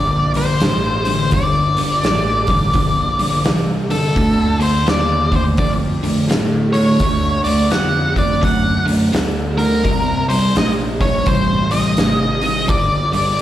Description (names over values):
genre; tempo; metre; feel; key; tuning
blues rock power trio and southern rock; 84 BPM; 4/4; swing 63% on 8ths; G harmonic minor; A4 = 439 Hz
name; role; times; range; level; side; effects
octave-fuzz lead guitar; melody; 0.0-13.4 s; A4 to F#5; -19 LUFS; left 1 dB; distortion, slapback echo, tape echo
cranked stack guitar; riff; 0.0-13.4 s; G2 to B3; -20 LUFS; equal; overdrive
fuzz picked electric bass; bass; 0.0-13.4 s; G1 to A2; -20 LUFS; equal; overdrive
oversized low-tuned drum kit; drums; 0.3-13.4 s; hi-hat, kick drum, snare drum; -20 LUFS; equal; none
room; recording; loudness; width
light reverb; live gig heard through the venue's PA, recital hall reverb; -14 LUFS; side -12 dB against mid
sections
0.0-13.4 A section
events
none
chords
0.0 Gm; 4.2 D; 9.8 Cm; 12.7 G5